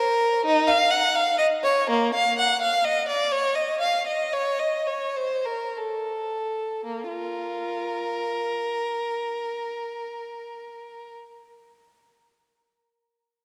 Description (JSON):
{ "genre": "classical, baroque-style suite movement for unaccompanied violin", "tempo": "52-88 BPM (dotted quarters)", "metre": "6/8", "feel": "rubato", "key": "Bb minor", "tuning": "A4 = 440 Hz", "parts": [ { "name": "rich violin", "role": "solo", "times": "0.0-11.1 s", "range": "Bb3 to Gb5", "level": "-25 LUFS", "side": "equal", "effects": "none" } ], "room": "wet church reverb, RT60 3.0 s", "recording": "none", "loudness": "-25 LUFS", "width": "mono", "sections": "0.0-6.8 A section; 6.8-11.1 B section", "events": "slowing down 2.6-6.8", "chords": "none" }